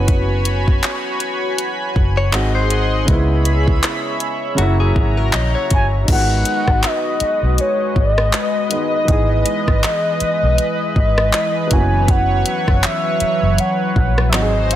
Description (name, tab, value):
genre	contemporary R&B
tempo	80 BPM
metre	4/4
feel	swing 58% on 16ths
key	unclear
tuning	A4 = 440 Hz
part	warm concert grand piano	accompaniment	0.0-14.8 s	C#3 to G#4	-24 LUFS	right 2 dB	none
part	chorused pulse-width pad	sustained chords	0.0-14.8 s	E3 to B#5	-22 LUFS	equal	sidechain pumping
part	vintage muted fingered electric bass	bass	0.0-14.8 s	F#1 to C#2	-17 LUFS	equal	none
part	smooth R&B drum kit	drums	0.1-14.8 s	crash cymbal, handclaps, hi-hat, kick drum, rim click	-19 LUFS	equal	none
part	direct-recorded clean electric guitar	arpeggios	2.2-6.1 s	F#4 to D#5	-24 LUFS	left 6 dB	ping-pong delay
part	mellow horn-like synth lead	melody	5.7-14.8 s	C#5 to G#5	-19 LUFS	left 1 dB	chorus, ping-pong delay
room	light reverb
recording	none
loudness	-14 LUFS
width	side -12 dB against mid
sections	0.0-6.1 A section; 6.1-14.8 B section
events	none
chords	0.0 F#7sus4; 2.3 G#7; 3.1 C#m7; 4.6 F#7; 6.1 G#m7; 9.1 Emaj7/G#; 11.7 F#7sus4